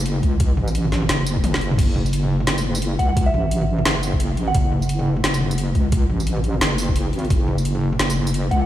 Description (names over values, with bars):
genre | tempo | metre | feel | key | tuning
half-time drum and bass | 174 BPM | 4/4 | swing 59% on 16ths, half-time | F# minor | A4 = 440 Hz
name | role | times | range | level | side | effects
deep soft wobble bass | bass | 0.0-8.7 s | F#1 to C#2 | -20 LUFS | equal | chorus
drum and bass drum kit | drums | 0.1-8.6 s | crash cymbal, hi-hat, snare drum, tambourine, toms | -24 LUFS | equal | overdrive, studio reverb
electronic kick drum | drums | 0.2-8.6 s | none | -19 LUFS | equal | overdrive, studio reverb
soft synth bell | melody | 3.0-5.0, 8.5-8.7 s | E5 to F#5 | -27 LUFS | right 1 dB | chorus, phaser, digital delay
room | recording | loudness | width
little or no reverb | played on a big sound system in a bare room, large studio reverb | -18 LUFS | side -12 dB against mid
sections
0.0-8.7 A section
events
drum fill 1.4-1.8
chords
0.0 F#m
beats
0.06 | 0.41 0.75 1.09 1.44 | 1.78 2.13 2.47 2.82 | 3.16 3.51 3.85 4.20 | 4.54 4.89 5.23 5.58 | 5.92 6.27 6.61 6.96 | 7.30 7.65 7.99 8.34